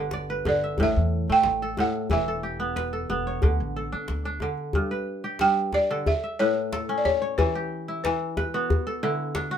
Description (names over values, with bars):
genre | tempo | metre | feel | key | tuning
west african traditional, West African string and xylophone music | 91 BPM | 4/4 | straight | G lydian | A4 = 438 Hz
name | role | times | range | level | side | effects
kora | arpeggios | 0.0-9.6 s | G2 to E5 | -28 LUFS | equal | none
upright bass | bass | 0.0-4.4 s | E1 to D3 | -29 LUFS | equal | none
djembe | percussion | 0.1-9.5 s | none | -27 LUFS | left 1 dB | none
balafon | melody | 0.5-9.0 s | B4 to G5 | -24 LUFS | right 2 dB | none
room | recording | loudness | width
moderate studio reverb, RT60 0.6 s | minimal, uncompressed stereo recording | -23 LUFS | side -9 dB against mid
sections
0.0-4.7 A section; 4.7-9.6 B section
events
none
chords
0.0 G; 0.8 A5; 2.1 Em; 3.4 D5; 4.7 G; 6.1 A; 7.4 Em; 8.7 D